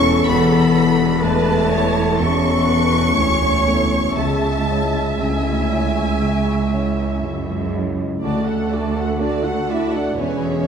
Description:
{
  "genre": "cinematic, emotional film score for orchestra",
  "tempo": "58-63 BPM",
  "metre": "4/4",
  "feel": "rubato",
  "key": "unclear",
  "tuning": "A4 = 440 Hz",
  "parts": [
    { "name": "rich studio violin section", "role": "melody", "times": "0.0-10.7 s", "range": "E5 to C#6", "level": "-25 LUFS", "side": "left 2 dB", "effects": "none" },
    { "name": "rich studio violin section", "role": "second line", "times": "0.0-10.7 s", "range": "A4 to C#6", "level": "-28 LUFS", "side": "left 1 dB", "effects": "none" },
    { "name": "rich studio viola section", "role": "accompaniment", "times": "0.0-10.7 s", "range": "E4 to F#5", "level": "-26 LUFS", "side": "right 3 dB", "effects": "none" },
    { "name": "warm concert grand piano", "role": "accompaniment", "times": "0.0-10.7 s", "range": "E1 to C#5", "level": "-23 LUFS", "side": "left 2 dB", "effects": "none" },
    { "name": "dark French horn section", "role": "sustained chords", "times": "0.0-10.7 s", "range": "G#3 to B4", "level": "-24 LUFS", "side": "left 1 dB", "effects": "none" },
    { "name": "concert harp", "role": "arpeggios", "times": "0.0-10.7 s", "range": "C#3 to C#6", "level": "-25 LUFS", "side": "left 8 dB", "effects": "none" },
    { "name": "rich studio cello section", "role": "bass", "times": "0.0-10.7 s", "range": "C#2 to F#2", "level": "-24 LUFS", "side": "right 4 dB", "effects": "none" },
    { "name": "warm studio double bass section", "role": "bass", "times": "0.0-10.7 s", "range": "E1 to D2", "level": "-24 LUFS", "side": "right 4 dB", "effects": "none" },
    { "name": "clear French horn", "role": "melody", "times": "8.2-10.7 s", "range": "A3 to F#4", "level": "-24 LUFS", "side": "right 1 dB", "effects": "none" }
  ],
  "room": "wet scoring stage reverb, RT60 2.1 s",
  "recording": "none",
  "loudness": "-16 LUFS",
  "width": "side -7 dB against mid",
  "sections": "0.0-8.2 A section; 8.2-10.7 B section",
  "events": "none",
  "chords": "0.3 Aadd9/E; 4.2 C#m; 8.2 D"
}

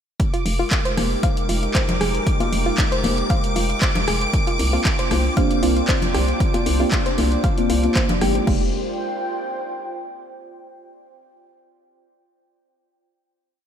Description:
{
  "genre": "deep house",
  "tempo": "116 BPM",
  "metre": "4/4",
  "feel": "swing 53% on 16ths",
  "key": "F dorian",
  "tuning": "A4 = 439 Hz",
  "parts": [
    { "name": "warbly tape-like pad", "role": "sustained chords", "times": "0.5-8.7 s", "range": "Ab3 to C5", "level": "-27 LUFS", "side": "equal", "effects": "chorus, built-in reverb, sidechain pumping" },
    { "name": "electronic kick drum", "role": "drums", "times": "0.2-8.6 s", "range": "none", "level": "-22 LUFS", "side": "equal", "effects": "overdrive" },
    { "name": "punchy analog drum machine", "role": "drums", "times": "0.2-8.6 s", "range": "crash cymbal, handclaps, hi-hat, rim click", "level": "-27 LUFS", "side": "equal", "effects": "none" },
    { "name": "airy breathy pad", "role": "texture", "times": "1.1-10.5 s", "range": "C4 to G5", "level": "-32 LUFS", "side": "right 1 dB", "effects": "chorus, sidechain pumping" },
    { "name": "string machine, violins", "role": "texture", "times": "0.2-8.5 s", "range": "D6", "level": "-29 LUFS", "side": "right 1 dB", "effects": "ensemble chorus, sidechain pumping" },
    { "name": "soft round pluck", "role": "arpeggios", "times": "0.3-8.7 s", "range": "F4 to F5", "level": "-28 LUFS", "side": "left 1 dB", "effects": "chorus, vintage 12-bit sampler grit, sidechain pumping, ping-pong delay" },
    { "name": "hollow knocking FM bass", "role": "bass", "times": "0.5-8.7 s", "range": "F1 to C2", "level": "-22 LUFS", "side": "equal", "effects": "sidechain pumping" },
    { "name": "congas", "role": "percussion", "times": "1.0-8.2 s", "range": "none", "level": "-29 LUFS", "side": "left 3 dB", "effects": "none" },
    { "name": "deep mellow chord stab", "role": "stabs", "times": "4.7-8.7 s", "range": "Ab3 to G4", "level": "-25 LUFS", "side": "right 1 dB", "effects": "chorus, phaser, sidechain pumping, diffuse ambient delay" }
  ],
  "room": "light reverb",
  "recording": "none",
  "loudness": "-18 LUFS",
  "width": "side -8 dB against mid",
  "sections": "0.2-8.5 groove; 8.5-10.5 final chord",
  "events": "fade-in on analog synth pad 0.2-8.5",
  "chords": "0.2 Fm11; 4.3 C9sus4; 8.5 Fm11"
}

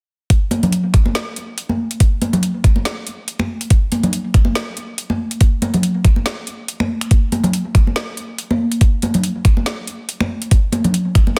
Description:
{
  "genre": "dubstep",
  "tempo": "141 BPM",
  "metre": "4/4",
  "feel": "swing 55% on 16ths, half-time",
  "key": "none",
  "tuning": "none",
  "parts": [
    { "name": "electronic kick drum", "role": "drums", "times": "0.3-11.2 s", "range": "none", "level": "-14 LUFS", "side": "equal", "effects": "overdrive, small room ambience" },
    { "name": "garage drum kit", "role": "drums", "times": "0.3-11.4 s", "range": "finger snaps, hi-hat, snare drum", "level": "-26 LUFS", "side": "equal", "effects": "overdrive, small room ambience" },
    { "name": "congas", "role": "percussion", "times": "0.5-11.3 s", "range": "none", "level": "-22 LUFS", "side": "equal", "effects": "dub echo" }
  ],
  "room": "light reverb, digital ambience",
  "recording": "dense, heavily limited modern master",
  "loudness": "-17 LUFS",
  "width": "mono",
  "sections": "0.3-11.4 A section",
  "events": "none",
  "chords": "none"
}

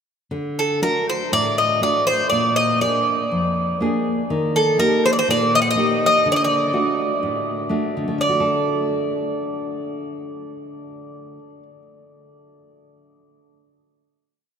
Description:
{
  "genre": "greek folk, Greek bouzouki band",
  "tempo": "123 BPM",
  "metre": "4/4",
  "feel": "straight",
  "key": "D phrygian dominant",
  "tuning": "A4 = 436 Hz",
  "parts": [
    { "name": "nylon-string guitar", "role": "accompaniment", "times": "0.3-11.8 s", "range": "F2 to A4", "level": "-23 LUFS", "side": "equal", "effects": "none" },
    { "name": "Greek bouzouki", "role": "melody", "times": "0.6-11.6 s", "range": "A4 to F#5", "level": "-19 LUFS", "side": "equal", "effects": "none" }
  ],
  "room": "wet cathedral reverb, RT60 6.6 s",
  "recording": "in a vast, echoing space",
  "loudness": "-17 LUFS",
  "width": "side -7 dB against mid",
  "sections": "0.3-8.2 A section; 8.2-12.0 final chord",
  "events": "none",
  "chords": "0.3 D; 2.3 Bb7; 4.3 Eb; 6.3 D"
}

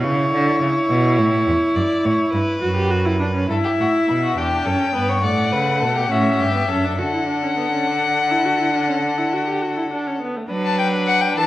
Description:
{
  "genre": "classical, baroque-style fugue for string quartet",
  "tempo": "69 BPM (dotted quarters)",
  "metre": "12/8",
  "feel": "straight",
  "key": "D major",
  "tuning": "A4 = 441 Hz",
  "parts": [
    { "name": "rich violin", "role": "second line", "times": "0.0-11.5 s", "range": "E4 to D5", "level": "-24 LUFS", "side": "left 2 dB", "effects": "none" },
    { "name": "warm viola", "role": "accompaniment", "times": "0.0-11.5 s", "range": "A3 to G4", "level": "-22 LUFS", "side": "right 1 dB", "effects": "none" },
    { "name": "clear cello", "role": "bass", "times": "0.0-11.5 s", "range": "E2 to F#3", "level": "-22 LUFS", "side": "right 2 dB", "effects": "none" },
    { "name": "warm violin", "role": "melody", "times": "3.5-11.5 s", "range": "E5 to A5", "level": "-21 LUFS", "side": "left 5 dB", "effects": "none" }
  ],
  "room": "moderate recital hall reverb, RT60 1.5 s",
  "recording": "worn, warbling old tape, cassette tape, warbly pitch drift",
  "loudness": "-17 LUFS",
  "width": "side -15 dB against mid",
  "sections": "0.0-3.5 A section; 3.5-10.5 B section",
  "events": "none",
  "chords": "0.0 A/C#; 1.8 N.C.; 3.5 Em; 5.2 D/A; 6.1 A7; 7.0 D"
}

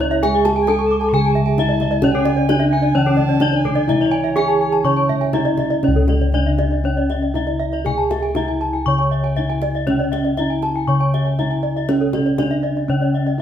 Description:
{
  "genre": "Balinese gamelan",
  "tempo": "119-133 BPM",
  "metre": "4/4",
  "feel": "straight",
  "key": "C# pelog",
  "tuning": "A4 = 441 Hz",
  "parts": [
    { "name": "gamelan-type bronze metallophone", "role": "melody", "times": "0.0-13.4 s", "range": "C#4 to C#5", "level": "-21 LUFS", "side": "equal", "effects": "none" },
    { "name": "gamelan-type bronze metallophone", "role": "accompaniment", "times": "0.0-5.8 s", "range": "C#3 to C#4", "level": "-23 LUFS", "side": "right 1 dB", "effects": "none" },
    { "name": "gamelan-type bronze metallophone", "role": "arpeggios", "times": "0.0-13.4 s", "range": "A4-20c to D6+20c", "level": "-24 LUFS", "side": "left 4 dB", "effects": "none" },
    { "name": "gamelan-type bossed gongs", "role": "bass", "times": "0.0-13.4 s", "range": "C#2 to G#4-30c", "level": "-20 LUFS", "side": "equal", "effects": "none" },
    { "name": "kendang", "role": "percussion", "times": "0.0-13.4 s", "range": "none", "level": "-29 LUFS", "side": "left 4 dB", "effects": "none" },
    { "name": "gamelan-type bronze metallophone", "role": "arpeggios", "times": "0.1-13.4 s", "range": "A4-20c to C#6", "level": "-25 LUFS", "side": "right 2 dB", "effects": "none" },
    { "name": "alto recorder", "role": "second line", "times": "0.6-4.9 s", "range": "C#5 to C#6", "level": "-27 LUFS", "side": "right 5 dB", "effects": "none" }
  ],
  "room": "moderate stone room reverb, RT60 1.2 s",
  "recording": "band playing live in one room",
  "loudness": "-15 LUFS",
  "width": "side -10 dB against mid",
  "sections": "0.0-5.8 A section; 5.8-13.4 B section",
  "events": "none",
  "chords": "none"
}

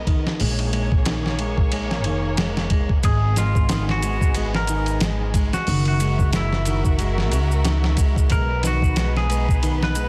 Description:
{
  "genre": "trip hop",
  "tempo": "91 BPM",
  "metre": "4/4",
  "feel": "swing 57% on 16ths",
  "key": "G# minor",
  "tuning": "A4 = 440 Hz",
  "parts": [
    { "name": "muted chamber violin section", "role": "sustained chords", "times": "0.0-10.1 s", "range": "G#3 to E5", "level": "-33 LUFS", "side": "equal", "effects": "vintage 12-bit sampler grit" },
    { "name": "upright bass", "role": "bass", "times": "0.0-10.1 s", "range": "E#1 to C#2", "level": "-25 LUFS", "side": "equal", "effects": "tube saturation" },
    { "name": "clean electric guitar", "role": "arpeggios", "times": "0.1-10.1 s", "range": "D#3 to G#3", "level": "-31 LUFS", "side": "equal", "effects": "vibrato effect, digital delay" },
    { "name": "dusty soul sampler-style drum kit", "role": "drums", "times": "0.1-10.1 s", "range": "hi-hat, kick drum, ride cymbal, snare drum", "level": "-25 LUFS", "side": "equal", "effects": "none" },
    { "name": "clean electric guitar", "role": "melody", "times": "3.0-10.1 s", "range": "E4 to B4", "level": "-30 LUFS", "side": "equal", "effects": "dub echo" },
    { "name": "maracas", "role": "percussion", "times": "3.0-10.1 s", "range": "none", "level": "-38 LUFS", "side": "equal", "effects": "none" }
  ],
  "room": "digital ambience",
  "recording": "dense, heavily limited modern master",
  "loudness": "-21 LUFS",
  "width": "mono",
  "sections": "0.0-10.1 A section",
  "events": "none",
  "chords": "0.4 A#m7; 3.0 G#m7; 5.7 F#7; 8.3 B"
}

